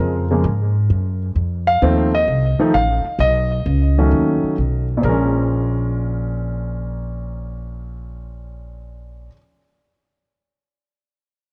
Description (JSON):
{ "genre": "jazz", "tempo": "131 BPM", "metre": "4/4", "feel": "swing 68% on 8ths", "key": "Bb minor", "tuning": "A4 = 441 Hz", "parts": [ { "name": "warm concert grand piano", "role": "melody", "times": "0.0-9.4 s", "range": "Bb2 to F5", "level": "-21 LUFS", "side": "equal", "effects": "analog delay" }, { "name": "upright bass", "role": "bass", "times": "0.0-9.3 s", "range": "A1 to Ab2", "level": "-22 LUFS", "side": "equal", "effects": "none" } ], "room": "moderate studio reverb, RT60 0.5 s", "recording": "worn, warbling old tape, cassette tape, warbly pitch drift", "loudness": "-18 LUFS", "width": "mono", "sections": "0.0-5.0 A section; 5.0-8.7 B section", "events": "none", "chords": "0.0 Bbm7; 1.4 F7; 3.2 B7; 5.0 Bbm7", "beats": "0.45 0.90 | 1.36 1.82 2.28 2.74 | 3.20 3.66 4.11 4.57 | 5.03 5.49 5.95 6.41 | 6.87 7.33 7.79 8.24" }